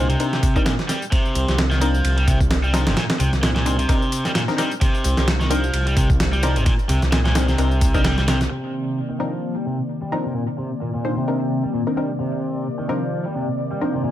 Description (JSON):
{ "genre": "breakbeat, breaks", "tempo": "130 BPM", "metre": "4/4", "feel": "swing 56% on 16ths", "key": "C minor", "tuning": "A4 = 443 Hz", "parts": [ { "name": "cranked stack guitar", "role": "riff", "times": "0.0-14.1 s", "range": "Bb2 to G3", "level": "-24 LUFS", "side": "equal", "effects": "overdrive, vintage 12-bit sampler grit, low-pass filter, tape echo" }, { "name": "filtered dub chord stab", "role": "stabs", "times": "0.0-14.1 s", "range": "C4 to C5", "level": "-27 LUFS", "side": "left 2 dB", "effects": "chorus, tape echo" }, { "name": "dark detuned saw bass", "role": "bass", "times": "0.0-8.5 s", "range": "G1 to C2", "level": "-20 LUFS", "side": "equal", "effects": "none" }, { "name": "dusty soul sampler-style drum kit", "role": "drums", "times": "0.1-8.5 s", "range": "kick drum, ride cymbal, snare drum", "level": "-21 LUFS", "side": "equal", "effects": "none" }, { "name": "tambourine", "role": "drums", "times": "0.1-8.5 s", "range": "none", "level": "-36 LUFS", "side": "left 6 dB", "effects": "none" }, { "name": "lush unison pad", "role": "sustained chords", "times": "8.5-14.1 s", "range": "C3 to D5", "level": "-25 LUFS", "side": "left 1 dB", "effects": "chorus, phaser, sidechain pumping" } ], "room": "light reverb", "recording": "none", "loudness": "-18 LUFS", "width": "side -13 dB against mid", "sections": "0.0-8.5 A section; 8.5-14.1 B section", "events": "none", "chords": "0.0 Cm9" }